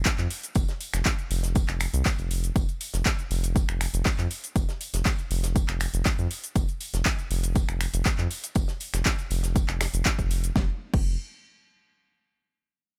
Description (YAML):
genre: progressive house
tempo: 120 BPM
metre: 4/4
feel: straight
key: unclear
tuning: A4 = 440 Hz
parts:
  - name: round analog bass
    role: bass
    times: 0.0-11.2 s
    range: F1 to F2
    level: -30 LUFS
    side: equal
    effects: sidechain pumping
  - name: electronic kick drum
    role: drums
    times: 0.1-11.0 s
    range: none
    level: -28 LUFS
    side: equal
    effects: overdrive
  - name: pop drum kit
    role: drums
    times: 0.1-11.0 s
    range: cabasa, crash cymbal, finger snaps, handclaps, hi-hat, snare drum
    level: -33 LUFS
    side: equal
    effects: overdrive, sidechain pumping on hats, sidechain pumping on perc, sidechain pumping on cymbals
  - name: tambourine and snare drum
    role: drums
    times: 0.1-10.4 s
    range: none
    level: -43 LUFS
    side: equal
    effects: high-pass filter on snare, high-pass filter on perc, high-pass filter on room
room: little or no reverb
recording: none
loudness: -27 LUFS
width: mono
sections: 0.0-10.6 A section; 10.6-12.6 B section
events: drop 0.0-10.6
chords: none